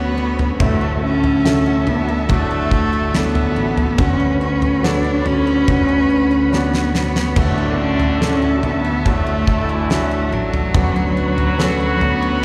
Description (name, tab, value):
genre	pop ballad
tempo	71 BPM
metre	4/4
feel	straight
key	unclear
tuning	A4 = 440 Hz
part	rich cello	melody	0.0-12.4 s	F#3 to D4	-22 LUFS	equal	slapback echo, tape echo
part	warm baby grand piano	accompaniment	0.0-12.4 s	A2 to C#5	-25 LUFS	equal	slapback echo
part	warm studio string section	sustained chords	0.0-12.4 s	F#4 to B5	-30 LUFS	equal	none
part	picked steel-string acoustic guitar	arpeggios	0.0-12.4 s	D3 to F#4	-32 LUFS	equal	slapback echo, tape echo
part	sustaining fretless electric bass	bass	0.0-12.4 s	A1 to D2	-24 LUFS	equal	lush chorus
part	damped 70s drum kit	drums	0.4-12.2 s	crash cymbal, kick drum, snare drum, toms	-22 LUFS	equal	none
part	muted French horn section	second line	7.4-12.4 s	D3 to F#4	-27 LUFS	equal	slapback echo
room	small room ambience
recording	live gig heard through the venue's PA, recital hall reverb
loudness	-17 LUFS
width	mono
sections	0.0-12.4 A section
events	drum fill 6.5-7.4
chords	0.0 Bmadd9/D; 0.6 Dadd9; 4.0 Bmadd9/D; 7.4 Dadd9; 10.7 Bmadd9/D